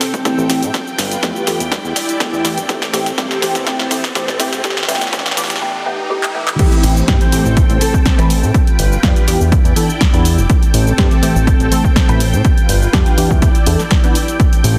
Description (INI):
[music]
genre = filtered disco house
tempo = 123 BPM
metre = 4/4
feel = straight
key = A minor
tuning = A4 = 440 Hz
[part]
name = string machine, full ensemble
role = sustained chords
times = 0.0-14.8 s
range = C4 to G5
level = -24 LUFS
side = equal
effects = ensemble chorus, vintage 12-bit sampler grit, sidechain pumping, low-pass filter
[part]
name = punchy analog drum machine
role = drums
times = 0.0-14.7 s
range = crash cymbal, handclaps, hi-hat, shaker, snare drum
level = -22 LUFS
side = equal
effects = overdrive, sidechain pumping on hats, high-pass filter on hats, studio ambience, high-pass filter on snare, sidechain pumping on perc, high-pass filter on perc, sidechain pumping on cymbals, high-pass filter on cymbals
[part]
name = riser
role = sound effects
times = 0.7-6.6 s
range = none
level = -30 LUFS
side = equal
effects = none
[part]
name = electronic kick drum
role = drums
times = 0.1-14.5 s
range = none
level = -16 LUFS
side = equal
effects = overdrive, high-pass filter on kick, studio ambience, high-pass filter on room
[part]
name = funky polysynth comp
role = accompaniment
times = 0.2-14.2 s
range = E3 to B4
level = -22 LUFS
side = equal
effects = chorus, phaser, sidechain pumping, low-pass filter
[part]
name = fat analog bass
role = bass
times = 0.4-14.8 s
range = E1 to A2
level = -19 LUFS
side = equal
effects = sidechain pumping, low-pass filter
[sound]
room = light reverb, digital ambience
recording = dense, heavily limited modern master, high-pass filter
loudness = -14 LUFS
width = mono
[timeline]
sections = 0.0-6.6 A section; 6.6-14.8 B section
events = build-up 0.0-6.6; drum fill 0.0-5.6, 6.2-6.6; filter sweep 0.0-6.6; drop 6.6-14.8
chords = 0.0 Am7; 0.7 G7; 1.5 Em7; 2.7 Am7; 4.6 G7; 5.4 Em7; 6.6 Am7; 8.5 G7; 9.3 Em7; 10.5 Am7; 12.4 G7; 13.2 Em7